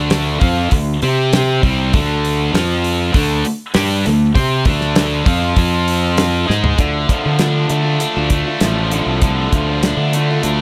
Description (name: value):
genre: classic rock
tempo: 99 BPM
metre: 4/4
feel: straight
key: D minor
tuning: A4 = 440 Hz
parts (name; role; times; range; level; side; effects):
- tight distorted guitar; riff; 0.0-10.6 s; C3 to C5; -20 LUFS; equal; distortion
- fuzz fingered electric bass; bass; 0.0-10.6 s; A1 to D3; -20 LUFS; equal; overdrive
- damped 70s drum kit; drums; 0.1-10.6 s; hi-hat, kick drum, snare drum, toms; -20 LUFS; equal; none
- picked acoustic archtop guitar; accompaniment; 6.8-10.6 s; D3 to F4; -26 LUFS; equal; none
room: light reverb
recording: none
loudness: -16 LUFS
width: mono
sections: 0.0-6.8 A section; 6.8-10.6 B section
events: drum fill 6.5-6.8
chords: 0.0 Dm; 1.0 C5; 1.6 D5; 2.5 F5; 3.1 Dm; 5.6 F5; 6.5 G#5; 6.8 Dm